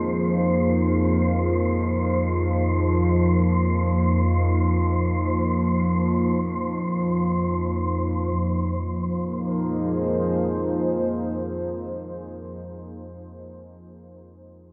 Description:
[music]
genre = ambient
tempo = free time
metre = none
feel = none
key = F minor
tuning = A4 = 441 Hz
[part]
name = deep dark ambient pad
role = sustained chords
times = 0.0-13.4 s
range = F3 to C5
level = -28 LUFS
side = equal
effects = chorus, built-in reverb
[part]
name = analog drone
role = drone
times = 0.0-12.6 s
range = F2 to F3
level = -26 LUFS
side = equal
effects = chorus
[part]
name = wind-like tuned noise texture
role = texture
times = 0.0-8.4 s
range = C5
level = -34 LUFS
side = equal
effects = built-in reverb
[sound]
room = wet huge ambient reverb, RT60 8.6 s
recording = in a vast, echoing space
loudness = -23 LUFS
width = mono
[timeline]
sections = 0.0-8.4 A section; 8.4-13.5 B section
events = none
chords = 0.0 Fm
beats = free time

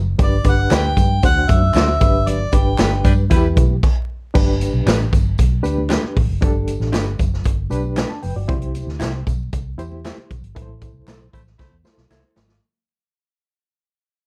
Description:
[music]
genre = uptempo 1960s-style soul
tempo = 116 BPM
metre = 4/4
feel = straight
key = G major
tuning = A4 = 440 Hz
[part]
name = vintage muted fingered electric bass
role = bass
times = 0.0-12.6 s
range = F#1 to G2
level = -23 LUFS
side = equal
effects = none
[part]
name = mellow harmonica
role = melody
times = 0.2-3.1 s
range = D5 to G5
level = -23 LUFS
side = equal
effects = slapback echo, plate reverb
[part]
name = barky reed electric piano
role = accompaniment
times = 0.2-12.4 s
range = G2 to A5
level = -27 LUFS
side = equal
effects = fast tremolo
[part]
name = swinging big-band drum kit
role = drums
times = 0.2-12.6 s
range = crash cymbal, hi-hat, kick drum, snare drum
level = -20 LUFS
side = equal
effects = none
[part]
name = congas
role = percussion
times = 0.2-12.5 s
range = none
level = -36 LUFS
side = equal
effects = none
[part]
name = tambourine and handclaps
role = percussion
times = 0.2-12.5 s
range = none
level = -39 LUFS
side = equal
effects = none
[part]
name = electric guitar through a small old amp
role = stabs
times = 0.7-12.2 s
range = D4 to C5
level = -28 LUFS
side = equal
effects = slapback echo
[part]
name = clear saxophone section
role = second line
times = 3.0-3.5, 11.3-11.8 s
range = G3 to C5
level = -28 LUFS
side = equal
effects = none
[sound]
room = light reverb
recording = dark, warm production, vinyl crackle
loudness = -18 LUFS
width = mono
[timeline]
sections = 0.0-4.3 A section; 4.3-12.6 B section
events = band accent 2.3-4.3, 10.6-12.6; stop 3.8-4.3; fade-out 4.3-12.6; drum fill 11.6-12.6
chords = 0.2 G; 1.2 D7; 2.0 G; 3.3 Em; 3.8 N.C.; 4.3 G; 8.5 C; 10.6 Am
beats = | 0.20 0.71 1.24 1.75 | 2.27 2.79 3.31 3.83 | 4.35 4.87 5.38 5.90 | 6.42 6.94 7.45 7.97 | 8.49 9.00 9.52 10.04 | 10.55 11.07 11.59 12.11

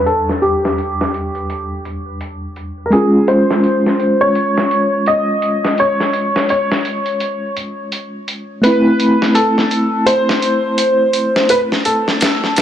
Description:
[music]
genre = trip hop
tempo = 84 BPM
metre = 4/4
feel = swing 59% on 16ths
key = unclear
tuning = A4 = 440 Hz
[part]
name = felt-muted upright piano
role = melody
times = 0.0-12.6 s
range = G4 to Eb5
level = -16 LUFS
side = equal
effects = tape echo
[part]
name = tine electric piano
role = accompaniment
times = 0.0-12.6 s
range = E2 to F#5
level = -18 LUFS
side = equal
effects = tremolo, tape echo
[part]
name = boom bap sampler-style drum kit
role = drums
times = 0.1-12.6 s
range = hi-hat, snare drum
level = -19 LUFS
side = left 1 dB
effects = high-pass filter on hats, high-pass filter on snare, high-pass filter on room
[sound]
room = light reverb, digital ambience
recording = low-pass filter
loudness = -13 LUFS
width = side -10 dB against mid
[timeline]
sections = 0.0-12.6 A section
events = filter sweep 0.0-12.6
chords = 0.0 Em7; 2.9 Db; 8.6 Am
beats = | 0.07 0.78 1.49 2.21 | 2.92 3.64 4.35 5.07 | 5.78 6.49 7.21 7.92 | 8.64 9.35 10.06 10.78 | 11.49 12.21

